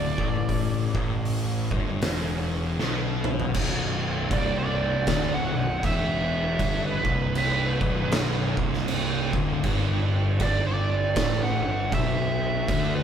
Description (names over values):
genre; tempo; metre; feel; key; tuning
stoner and doom metal; 79 BPM; 4/4; swing 60% on 8ths; B minor; A4 = 440 Hz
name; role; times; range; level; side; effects
fuzz lead guitar; melody; 0.0-13.0 s; B4 to F#5; -29 LUFS; right 3 dB; wah, distortion
thick fuzz guitar; riff; 0.0-13.0 s; B1 to D3; -29 LUFS; left 6 dB; distortion
thick fuzz guitar; riff; 0.0-13.0 s; B1 to D3; -30 LUFS; right 5 dB; distortion
fuzz picked electric bass; bass; 0.0-13.0 s; B0 to D2; -31 LUFS; right 1 dB; overdrive
oversized low-tuned drum kit; drums; 0.2-12.9 s; crash cymbal, hi-hat, kick drum, snare drum, toms; -28 LUFS; right 1 dB; none
room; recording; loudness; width
moderate large studio reverb, RT60 1.0 s; band playing live in one room; -23 LUFS; side -8 dB against mid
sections
0.0-3.5 A section; 3.5-13.0 B section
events
drum fill 2.8-3.5; lead electric guitar solo 3.5-13.0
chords
0.0 D5; 3.5 Bm; 9.6 G5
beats
| 0.49 1.26 2.02 2.79 | 3.55 4.31 5.07 5.83 | 6.60 7.36 8.12 8.88 | 9.64 10.40 11.16 11.93 | 12.69